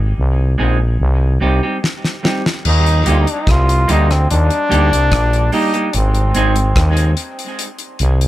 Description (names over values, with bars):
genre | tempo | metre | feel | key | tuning
dub reggae | 73 BPM | 4/4 | straight | Eb major | A4 = 440 Hz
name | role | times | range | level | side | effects
growling FM bass | bass | 0.0-8.3 s | Ab1 to Eb2 | -14 LUFS | equal | none
semi-hollow electric guitar | accompaniment | 0.6-6.5 s | G3 to Ab4 | -21 LUFS | right 2 dB | low-pass filter, tape echo
damped 70s drum kit | drums | 1.8-8.3 s | crash cymbal, hi-hat, kick drum, rim click, snare drum | -19 LUFS | left 1 dB | none
brilliant trombone | melody | 2.7-7.6 s | C4 to F4 | -19 LUFS | equal | low-pass filter, tape echo
room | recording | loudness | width
light reverb, small room ambience | none | -12 LUFS | side -15 dB against mid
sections
0.0-2.6 A section; 2.6-8.3 B section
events
break 1.8-2.6, 5.9-8.3; drum fill 1.8-2.6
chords
0.0 Ab; 1.0 Cm; 2.6 Eb; 5.9 Ab; 7.6 N.C.